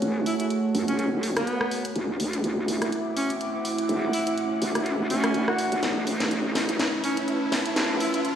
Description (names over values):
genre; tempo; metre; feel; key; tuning
bass house; 124 BPM; 4/4; swing 56% on 16ths; unclear; A4 = 440 Hz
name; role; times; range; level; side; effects
dark analog pad; sustained chords; 0.0-8.4 s; A3 to E5; -31 LUFS; right 2 dB; chorus, phaser
vowel-sweep wobble bass; bass; 0.0-8.0 s; E1 to F#2; -27 LUFS; equal; chorus, overdrive, high-pass filter
garage drum kit; drums; 0.0-8.4 s; hi-hat, rim click, snare drum; -30 LUFS; equal; none
riser; sound effects; 1.0-8.4 s; none; -34 LUFS; equal; none
airy breathy pad; texture; 0.0-8.4 s; A3 to D6; -30 LUFS; right 2 dB; chorus
warm alto saxophone; melody; 0.3-8.2 s; B3 to F#4; -31 LUFS; equal; tape echo
room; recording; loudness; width
moderate lush hall reverb, RT60 2.0 s, digital ambience; played on a big sound system in a bare room, stone room reverb, high-pass filter; -23 LUFS; side -9 dB against mid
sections
0.0-8.4 A section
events
build-up 0.0-8.4; filter sweep 0.0-8.4; riser 1.0-8.4; drum fill 5.8-8.4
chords
0.0 F#madd9; 2.0 Dadd9; 5.8 Aadd9